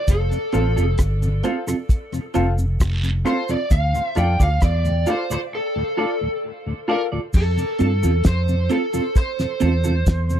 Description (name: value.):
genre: roots reggae.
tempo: 66 BPM.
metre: 4/4.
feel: straight.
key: F major.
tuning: A4 = 441 Hz.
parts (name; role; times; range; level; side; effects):
lead guitar through a small cranked amp; melody; 0.0-10.4 s; A4 to G5; -25 LUFS; equal; overdrive, dub echo.
vintage muted fingered electric bass; bass; 0.1-10.4 s; F1 to G2; -19 LUFS; equal; none.
cloth-damped thuddy drum kit; drums; 0.1-10.4 s; crash cymbal, hi-hat, kick drum, rim click, snare drum; -17 LUFS; equal; none.
cabasa and guiro; percussion; 0.1-10.4 s; none; -36 LUFS; right 2 dB; none.
mellow tonewheel organ; accompaniment; 0.3-10.4 s; D2 to F4; -29 LUFS; left 2 dB; chorus vibrato, slow rotary speaker, dub echo.
clean electric guitar; accompaniment; 0.5-9.9 s; C4 to D5; -26 LUFS; right 5 dB; dub echo.
warm upright piano; stabs; 0.5-7.1 s; F4 to F5; -27 LUFS; left 5 dB; none.
room: small room ambience.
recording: dry, close 1970s-style studio recording.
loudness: -18 LUFS.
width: side -10 dB against mid.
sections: 0.0-7.3 A section; 7.3-10.4 B section.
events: lead electric guitar solo 0.0-7.3; break 5.5-7.3.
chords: 0.1 F; 3.7 Dm; 7.3 F.